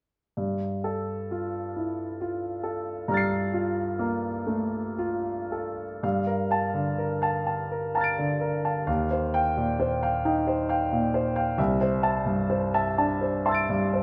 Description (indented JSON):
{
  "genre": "classical, impressionist solo piano",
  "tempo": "36-46 BPM (dotted quarters)",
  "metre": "6/8",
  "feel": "rubato",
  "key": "G minor",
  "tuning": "A4 = 440 Hz",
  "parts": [
    { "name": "clear concert grand piano", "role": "solo", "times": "0.4-14.0 s", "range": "C2 to D7", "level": "-27 LUFS", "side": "equal", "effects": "none" }
  ],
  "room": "wet recital hall reverb, RT60 1.3 s",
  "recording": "none",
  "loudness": "-27 LUFS",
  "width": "mono",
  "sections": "0.4-6.0 A section; 6.0-14.0 B section",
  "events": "none",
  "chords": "0.4 Gm11; 6.0 Gm9; 8.9 Eb69; 11.6 C69"
}